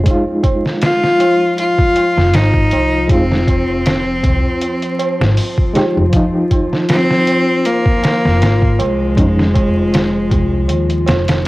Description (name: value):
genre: trip hop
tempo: 79 BPM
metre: 4/4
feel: swing 54% on 16ths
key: F minor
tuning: A4 = 439 Hz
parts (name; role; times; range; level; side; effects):
- reed electric piano; accompaniment; 0.0-9.5 s; F3 to G4; -20 LUFS; equal; tremolo, vintage 12-bit sampler grit, tape echo
- upright bass; bass; 0.0-11.5 s; F1 to Eb2; -16 LUFS; equal; none
- warbly tape-like pad; sustained chords; 0.1-11.5 s; F3 to F4; -21 LUFS; left 2 dB; chorus, built-in reverb
- trip hop sampler-style drum kit; drums; 0.1-11.5 s; hi-hat, kick drum, snare drum; -16 LUFS; equal; cassette tape
- tabla; percussion; 0.1-11.5 s; none; -24 LUFS; right 4 dB; none
- bright cello; melody; 0.8-11.5 s; Ab3 to F4; -16 LUFS; equal; dub echo
room: light reverb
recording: home recording on cassette, vinyl crackle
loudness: -12 LUFS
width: side -19 dB against mid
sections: 0.0-11.5 A section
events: none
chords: 0.1 Fm7; 6.1 Dbadd9/F (rootless)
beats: | 0.06 0.82 1.58 2.34 | 3.10 3.86 4.62 5.38 | 6.14 6.90 7.66 8.41 | 9.17 9.93 10.69 11.45